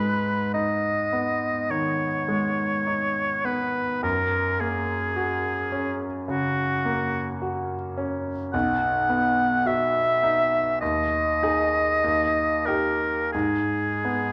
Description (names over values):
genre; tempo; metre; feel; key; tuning
classical, romantic duo for oboe and grand piano; 43-54 BPM; 4/4; rubato; G# minor; A4 = 440 Hz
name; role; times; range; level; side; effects
warm oboe; melody; 0.0-14.3 s; F#4 to F#5; -26 LUFS; equal; none
bright grand piano; accompaniment; 0.0-14.3 s; B1 to G#4; -29 LUFS; equal; none
room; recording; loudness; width
moderate recital hall reverb, RT60 1.4 s; dark, warm production; -24 LUFS; mono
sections
0.0-14.3 A section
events
none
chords
0.0 G#m; 4.0 F#; 8.5 B; 10.8 G#5/D#; 12.0 D#; 13.3 G#m